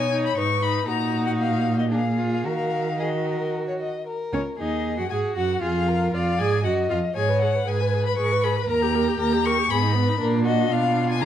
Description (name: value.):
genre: quick classical-period movement for string quartet.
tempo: 117 BPM.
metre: 3/4.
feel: rubato.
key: Eb minor.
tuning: A4 = 441 Hz.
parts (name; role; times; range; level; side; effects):
rich violin; melody; 0.0-11.2 s; Db5 to Db6; -27 LUFS; left 7 dB; none.
dark violin; second line; 0.0-11.2 s; F4 to Eb5; -28 LUFS; left 4 dB; none.
rich viola; accompaniment; 0.0-11.2 s; Cb4 to Cb5; -27 LUFS; right 2 dB; none.
rich cello; bass; 0.0-11.2 s; Db2 to Eb3; -24 LUFS; right 3 dB; none.
room: light reverb.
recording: dark, warm production.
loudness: -21 LUFS.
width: side -10 dB against mid.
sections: 0.0-4.1 A section; 4.1-11.2 B section.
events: none.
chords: 0.4 Abm; 0.9 Ebm/Bb; 1.9 Bb5; 2.5 Ebm; 5.6 Fm6; 6.7 Ebm/Gb; 7.2 Abm; 8.7 Eb; 9.7 Abm; 10.2 Bb.